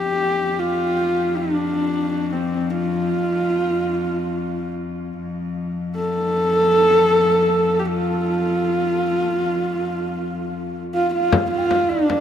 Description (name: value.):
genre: mongolian traditional, Mongolian folk.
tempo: 78 BPM.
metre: 4/4.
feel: straight.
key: F gong mode.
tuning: A4 = 440 Hz.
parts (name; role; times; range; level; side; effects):
dark horsehead fiddle; melody; 0.0-12.2 s; C4 to A4; -19 LUFS; equal; none.
rich cello; drone; 0.0-11.4 s; F2; -26 LUFS; left 3 dB; stereo widening.
mellow low xiao; second line; 10.9-12.2 s; D5 to G5; -26 LUFS; right 2 dB; none.
frame drum; percussion; 11.3-12.2 s; none; -22 LUFS; left 4 dB; none.
room: wet cathedral reverb, RT60 6.3 s.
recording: in a vast, echoing space.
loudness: -18 LUFS.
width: side -9 dB against mid.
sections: 0.0-11.3 A section.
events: none.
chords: none.